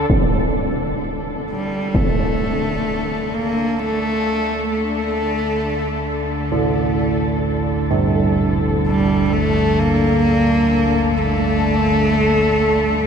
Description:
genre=dark ambient drone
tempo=free time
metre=none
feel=none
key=unclear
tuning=A4 = 438 Hz
part: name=muted symphonic cello section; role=sustained chords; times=0.0-13.1 s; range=D3 to A4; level=-24 LUFS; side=left 2 dB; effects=none
part: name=deep rumbling drone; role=drone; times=0.0-13.1 s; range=D2 to D3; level=-25 LUFS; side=left 1 dB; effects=built-in reverb
part: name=impact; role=percussion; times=0.1-2.1 s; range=none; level=-21 LUFS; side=equal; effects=low-pass filter on sfx
part: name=warm cello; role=melody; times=1.5-13.1 s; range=G3 to Bb3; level=-19 LUFS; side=equal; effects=ping-pong delay
part: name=carillon bells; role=arpeggios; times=6.5-13.1 s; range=G2 to A2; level=-20 LUFS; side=right 3 dB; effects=ping-pong delay
room=wet huge ambient reverb, RT60 7.8 s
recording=none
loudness=-16 LUFS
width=side -7 dB against mid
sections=0.1-13.1 A section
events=fade-in on synth drone 0.1-13.1; fade-in on cello section 0.1-13.1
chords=0.1 D5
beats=free time

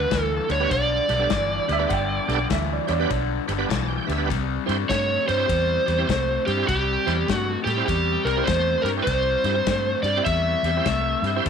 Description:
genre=electric blues shuffle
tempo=100 BPM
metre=4/4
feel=swing 64% on 8ths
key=unclear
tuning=A4 = 440 Hz
part: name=overdriven slide guitar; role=melody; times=0.0-11.5 s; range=G4 to E5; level=-23 LUFS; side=right 2 dB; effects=none
part: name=raw garage guitar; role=riff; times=0.0-11.5 s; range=G2 to A3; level=-28 LUFS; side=left 14 dB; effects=overdrive
part: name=vintage muted fingered electric bass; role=bass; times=0.0-11.5 s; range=G1 to A2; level=-27 LUFS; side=equal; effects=none
part: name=natural country drum kit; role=drums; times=0.1-11.5 s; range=kick drum, ride cymbal, snare drum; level=-30 LUFS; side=left 4 dB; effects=none
part: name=bright tonewheel organ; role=accompaniment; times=0.5-11.5 s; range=B3 to A5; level=-30 LUFS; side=right 12 dB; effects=slow rotary speaker, overdrive, chorus vibrato
part: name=clear upright piano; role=second line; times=1.7-3.2 s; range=C#5 to G5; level=-28 LUFS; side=right 10 dB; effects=none
room=light reverb, small room ambience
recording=1960s-style stereo with parts hard left and right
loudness=-20 LUFS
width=side -7 dB against mid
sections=0.0-11.5 A section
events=tonewheel organ fill 3.4-4.3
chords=0.0 G; 4.3 C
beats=0.11 0.71 1.31 | 1.91 2.50 3.10 3.70 | 4.29 4.89 5.49 6.09 | 6.68 7.28 7.88 8.48 | 9.07 9.67 10.27 10.87 | 11.46

